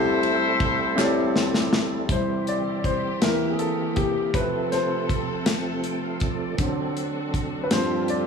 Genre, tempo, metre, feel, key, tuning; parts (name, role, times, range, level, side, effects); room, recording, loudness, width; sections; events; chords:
slow gospel; 53 BPM (dotted quarters); 6/8; straight; C major; A4 = 442 Hz
warm horn section; melody; 0.0-1.4 s; E4 to C5; -24 LUFS; left 2 dB; slapback echo
warm grand piano; accompaniment; 0.0-8.3 s; C2 to E5; -25 LUFS; left 2 dB
tonewheel organ; sustained chords; 0.0-8.3 s; C3 to G5; -29 LUFS; right 3 dB; slow rotary speaker, overdrive, chorus vibrato
modern studio drum kit; drums; 0.2-8.3 s; hi-hat, kick drum, ride cymbal, snare drum; -26 LUFS; left 1 dB
group handclap; percussion; 1.0-1.3 s; -33 LUFS; right 6 dB
rich studio string section; sustained chords; 2.1-8.3 s; C3 to A4; -34 LUFS; left 2 dB
moderate echo chamber reverb, RT60 2.5 s; studio ambience; -21 LUFS; side -6 dB against mid
0.0-2.1 A section; 2.1-8.3 B section
drum fill 1.0-2.1; grand piano solo 2.1-8.3; tonewheel organ fill 5.5-6.6
0.0 C6; 2.1 C; 3.2 C7/E; 4.3 F/C; 6.6 D7; 7.7 G9sus4